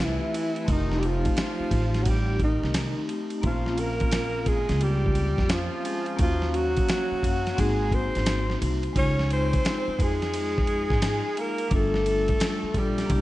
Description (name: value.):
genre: hip hop, jazz-hop.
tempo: 87 BPM.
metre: 4/4.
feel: swing 66% on 16ths.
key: unclear.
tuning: A4 = 437 Hz.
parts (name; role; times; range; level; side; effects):
breathy alto saxophone; melody; 0.0-13.2 s; Eb4 to Db5; -29 LUFS; equal; analog delay.
breathy tenor saxophone; second line; 0.0-13.2 s; Eb3 to Db4; -33 LUFS; right 3 dB; none.
vibraphone with medium mallets; accompaniment; 0.0-13.2 s; G3 to F5; -31 LUFS; left 2 dB; none.
upright bass; bass; 0.0-13.2 s; F1 to Ab2; -28 LUFS; equal; none.
dusty soul sampler-style drum kit; drums; 0.3-13.2 s; hi-hat, kick drum, ride cymbal, snare drum; -28 LUFS; equal; none.
room: light reverb, small room ambience.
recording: nothing above 10.3 kHz.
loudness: -23 LUFS.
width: side -16 dB against mid.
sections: 0.0-13.2 A section.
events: none.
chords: 0.0 Fmaj7 (rootless); 0.7 F7; 3.4 Bbm9; 6.2 Ebm7; 7.6 Ab7; 9.0 Dbmaj7; 11.7 Gm7.